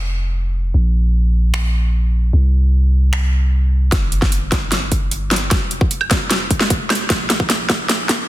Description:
future bass; 151 BPM; 4/4; half-time; A4 = 440 Hz
long sustained 808-style bass; bass; 0.0-8.3 s; F1 to C2; -16 LUFS; equal; sidechain pumping
big-room dance drum kit; drums; 1.5-8.2 s; finger snaps, hi-hat, snare drum, woodblock; -18 LUFS; equal; overdrive, high-pass filter on hats, small room reverb, high-pass filter on cymbals, high-pass filter on perc, high-pass filter on snare
electronic kick drum; drums; 3.9-8.2 s; -18 LUFS; equal; overdrive, small room reverb
little or no reverb; dense, heavily limited modern master, high-pass filter; -14 LUFS; side -15 dB against mid
0.0-3.9 A section; 3.9-8.3 B section
build-up 3.9-8.3; drum fill 3.9-8.3; filter sweep 3.9-8.3

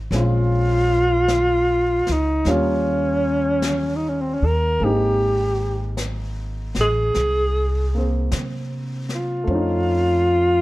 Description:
jazz ballad; 51 BPM; 4/4; swing 68% on 8ths; A4 = 445 Hz
warm upright piano; accompaniment; 0.0-10.6 s; G3 to C5; -27 LUFS; equal
upright bass; bass; 0.0-10.6 s; Ab1 to C3; -22 LUFS; equal
jazz brush drum kit; drums; 0.1-10.6 s; brushed snare drum, hi-hat, snare drum; -34 LUFS; left 2 dB
breathy alto saxophone; melody; 0.2-10.6 s; C4 to Bb4; -20 LUFS; equal
light reverb; dark, warm production; -18 LUFS; side -18 dB against mid
0.0-10.6 A section
0.1 Bbm7; 2.5 Eb9; 4.8 Abmaj9; 9.5 F7b13

